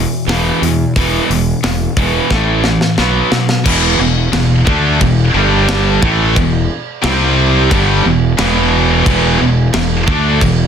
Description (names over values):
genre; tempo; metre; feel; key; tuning
hard rock; 89 BPM; 4/4; straight; E minor; A4 = 440 Hz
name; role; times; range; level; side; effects
cranked stack guitar; riff; 0.0-10.7 s; E2 to D4; -17 LUFS; right 10 dB; overdrive
scooped high-gain guitar; riff; 0.0-10.7 s; E2 to D4; -16 LUFS; left 8 dB; distortion
fuzz fingered electric bass; bass; 0.0-10.7 s; E1 to B2; -16 LUFS; equal; overdrive
tight metal drum kit; drums; 0.3-10.6 s; crash cymbal, hi-hat, kick drum, snare drum; -18 LUFS; equal; soft clipping on kick
heavy high-gain guitar; riff; 3.7-10.7 s; E2 to D4; -18 LUFS; right 1 dB; distortion
room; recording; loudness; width
light reverb, small room ambience; dense, heavily limited modern master; -10 LUFS; side -7 dB against mid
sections
0.0-3.7 A section; 3.7-10.7 B section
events
drum fill 2.3-3.7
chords
0.0 E5; 2.3 A5; 3.0 B5; 3.7 E5; 5.3 G5; 6.0 E5; 7.0 C5; 7.7 Em